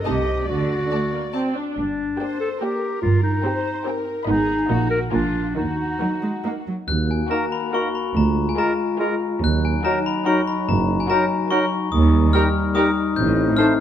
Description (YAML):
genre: cinematic, playful, whimsical film cue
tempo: 143 BPM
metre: 3/4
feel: straight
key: Eb minor from 4.3 s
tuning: A4 = 440 Hz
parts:
  - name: muted studio violin section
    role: melody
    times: 0.0-13.7 s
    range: F4 to Eb5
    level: -32 LUFS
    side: left 2 dB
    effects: none
  - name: muted studio violin section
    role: second line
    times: 0.0-13.7 s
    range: Gb4 to Cb6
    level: -33 LUFS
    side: left 2 dB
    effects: none
  - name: clear clarinet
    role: second line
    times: 0.1-13.7 s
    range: D4 to Bb4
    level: -26 LUFS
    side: left 1 dB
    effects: none
  - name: muted studio viola section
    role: accompaniment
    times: 0.1-13.7 s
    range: A3 to G4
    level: -29 LUFS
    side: right 1 dB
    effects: none
  - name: muted studio cello section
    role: bass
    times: 0.1-13.5 s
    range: D2 to Bb3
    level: -25 LUFS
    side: right 2 dB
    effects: none
  - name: muted studio double bass section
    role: bass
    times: 0.1-13.5 s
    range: Gb1 to Eb2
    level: -25 LUFS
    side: right 3 dB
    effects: none
  - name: glockenspiel with hard plastic mallets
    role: melody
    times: 6.9-13.8 s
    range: Ab5 to G6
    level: -25 LUFS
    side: left 6 dB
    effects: none
  - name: warm French horn section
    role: sustained chords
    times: 6.9-13.8 s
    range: Gb3 to Gb4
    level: -23 LUFS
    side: left 4 dB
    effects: none
  - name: mellow tuba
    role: bass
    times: 6.9-13.5 s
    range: Gb1 to Eb2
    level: -26 LUFS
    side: right 4 dB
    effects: none
  - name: clear oboe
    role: second line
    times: 7.3-13.7 s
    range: Bb4 to C5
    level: -29 LUFS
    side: right 1 dB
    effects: none
  - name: flute section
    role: second line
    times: 7.3-13.7 s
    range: A5 to Bb5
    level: -29 LUFS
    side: left 2 dB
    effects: none
  - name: warm bassoon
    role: accompaniment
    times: 7.3-13.7 s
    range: Gb3 to Bb3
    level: -28 LUFS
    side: right 2 dB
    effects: none
room: moderate scoring stage reverb, RT60 1.5 s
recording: none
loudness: -18 LUFS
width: side -10 dB against mid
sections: 0.0-6.9 A section; 6.9-13.8 B section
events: none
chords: 0.1 Adim/C; 0.5 D; 1.8 Gm; 3.0 Cm/G; 4.3 Abm; 4.7 Ebm/Bb; 5.1 Bb7; 5.6 Ebm; 8.2 Bb7/D; 9.4 Ebm; 10.7 Ebm/Gb; 11.9 Eb; 13.2 Am7b5